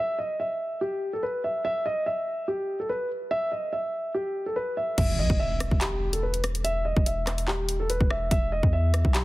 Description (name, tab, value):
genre	hip hop, drill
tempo	144 BPM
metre	4/4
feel	half-time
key	E harmonic minor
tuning	A4 = 440 Hz
part	dark grand piano	melody	0.0-9.2 s	G4 to E5	-28 LUFS	equal	low-pass filter
part	long sustained 808-style bass	bass	5.0-9.2 s	D#1 to E2	-27 LUFS	equal	none
part	drill drum kit	drums	5.0-9.2 s	crash cymbal, handclaps, hi-hat, kick drum, rim click	-26 LUFS	equal	none
part	impact	sound effects	5.0-6.6 s	none	-35 LUFS	equal	none
room	light reverb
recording	heavily compressed radio sound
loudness	-24 LUFS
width	side -18 dB against mid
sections	0.0-5.0 A section; 5.0-9.2 B section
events	impact 5.0-6.6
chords	0.0 N.C.; 5.0 E5